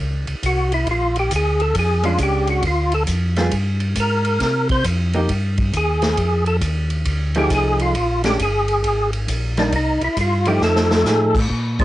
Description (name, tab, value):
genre	soul jazz organ trio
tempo	135 BPM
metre	4/4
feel	swing 65% on 8ths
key	Bb mixolydian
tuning	A4 = 440 Hz
part	mellow tonewheel organ	bass	0.0-11.8 s	G1 to C3	-20 LUFS	equal	slow rotary speaker
part	swinging big-band drum kit	drums	0.3-11.8 s	crash cymbal, hi-hat, kick drum, ride cymbal, snare drum	-24 LUFS	equal	cassette tape
part	percussive tonewheel organ	melody	0.5-11.8 s	F3 to C5	-20 LUFS	equal	slow rotary speaker, chorus vibrato, cassette tape, plate reverb
part	hollow-body jazz guitar	accompaniment	2.0-11.3 s	F3 to Ab4	-22 LUFS	right 1 dB	plate reverb
room	light reverb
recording	home recording on cassette, nothing above 10.4 kHz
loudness	-16 LUFS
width	side -15 dB against mid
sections	0.0-11.5 A section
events	tonewheel organ solo 0.0-11.5; drum fill 10.6-11.1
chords	0.0 E5; 0.9 Bb7#9; 2.6 Dm; 3.5 Gm; 4.4 Cm7; 6.2 F7#9; 8.0 Bb7(no3); 9.7 Cm; 10.6 F7#9